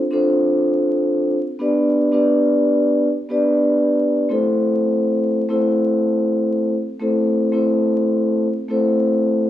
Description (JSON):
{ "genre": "hip hop", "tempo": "89 BPM", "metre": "4/4", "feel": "swing 56% on 16ths", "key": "A minor", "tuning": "A4 = 440 Hz", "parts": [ { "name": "vibraphone with soft mallets", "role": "solo", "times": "0.1-9.5 s", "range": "A3 to D5", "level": "-16 LUFS", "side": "equal", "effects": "cassette tape, high-pass filter, low-pass filter" } ], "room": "moderate small room reverb, RT60 0.5 s", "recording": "vinyl crackle, studio reverb", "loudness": "-16 LUFS", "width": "side -12 dB against mid", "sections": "0.0-9.5 A section", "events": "none", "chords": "0.0 Dm7; 1.6 G; 4.3 Am" }